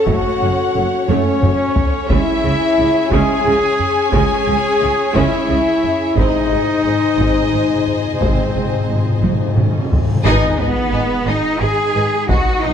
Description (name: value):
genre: cinematic, epic orchestral film score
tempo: 59 BPM (dotted quarters)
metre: 6/8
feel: straight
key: unclear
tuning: A4 = 439 Hz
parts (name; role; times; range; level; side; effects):
- rich symphonic violin section; melody; 0.0-12.7 s; B4 to G#5; -24 LUFS; left 2 dB; none
- warm symphonic violin section; second line; 0.0-12.7 s; B#4 to G#5; -27 LUFS; left 4 dB; none
- clear symphonic string section; sustained chords; 0.0-12.7 s; C#4 to G#5; -26 LUFS; right 1 dB; none
- dark French horn section; sustained chords; 0.0-12.7 s; F#3 to G#4; -19 LUFS; left 4 dB; none
- warm trumpet; stabs; 0.0-12.7 s; B3 to G#4; -23 LUFS; right 2 dB; none
- dark symphonic viola section; accompaniment; 0.1-12.7 s; G#3 to D#5; -24 LUFS; right 2 dB; none
- bright symphonic cello section; bass; 0.1-12.7 s; F#2 to G#4; -23 LUFS; right 2 dB; none
- rich symphonic double bass section; bass; 0.1-12.7 s; F#1 to C#2; -22 LUFS; right 3 dB; none
- taiko ensemble; drums; 0.1-12.7 s; none; -20 LUFS; equal; none
- timpani; percussion; 6.2-11.2 s; G#2; -21 LUFS; left 2 dB; none
- reverse cymbal and sub drop; sound effects; 10.2-12.3 s; none; -27 LUFS; left 1 dB; none
room: moderate scoring stage reverb, RT60 1.9 s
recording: dark, warm production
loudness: -13 LUFS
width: side -8 dB against mid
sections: 0.0-10.3 A section; 10.3-12.7 B section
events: drum fill 1.1-2.1, 9.2-10.3; timpani fill 6.2-10.3; reverse cymbal 10.2; band accent 10.3-10.9; impact 10.3-12.3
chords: 0.0 F#m; 2.1 C#m; 6.2 G#; 10.3 G#m